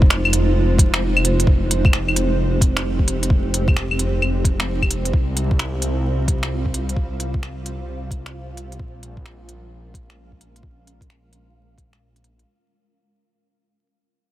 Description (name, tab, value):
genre	future garage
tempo	131 BPM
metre	4/4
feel	swing 64% on 16ths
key	F minor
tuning	A4 = 440 Hz
part	granular cloud pad	sustained chords	0.0-12.4 s	G3 to F5	-25 LUFS	right 1 dB	built-in reverb, sidechain pumping
part	swelling detuned saw bass	bass	0.0-12.4 s	F1 to C2	-23 LUFS	equal	tube saturation, sidechain pumping
part	electronic kick drum	drums	0.0-11.9 s	none	-17 LUFS	equal	none
part	organic electronic drum kit	drums	0.1-12.5 s	claves, finger snaps, hi-hat	-23 LUFS	left 1 dB	soft clipping on snare
room	little or no reverb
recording	dense, heavily limited modern master, vinyl crackle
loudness	-17 LUFS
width	side -14 dB against mid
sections	0.0-12.5 A section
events	fade-out 0.0-12.5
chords	0.0 Fm7; 5.1 Csus4; 8.8 Bbm7